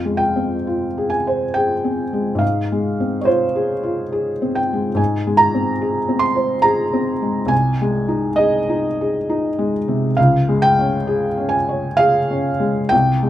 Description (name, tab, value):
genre	classical, romantic nocturne for solo piano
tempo	63-74 BPM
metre	3/4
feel	rubato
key	F minor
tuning	A4 = 438 Hz
part	felt-muted upright piano	solo	0.0-13.3 s	C2 to C6	-16 LUFS	equal	none
room	little or no reverb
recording	close, detailed microphones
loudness	-16 LUFS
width	side -12 dB against mid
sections	0.0-13.3 A section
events	none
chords	0.0 Fm; 2.4 Fm/Ab; 5.0 Ab; 7.5 Ab/C; 10.2 Db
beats	0.67 1.55 | 2.41 3.28 4.13 | 4.99 5.80 6.65 | 7.51 8.39 9.29 | 10.17 11.07 11.99 | 12.92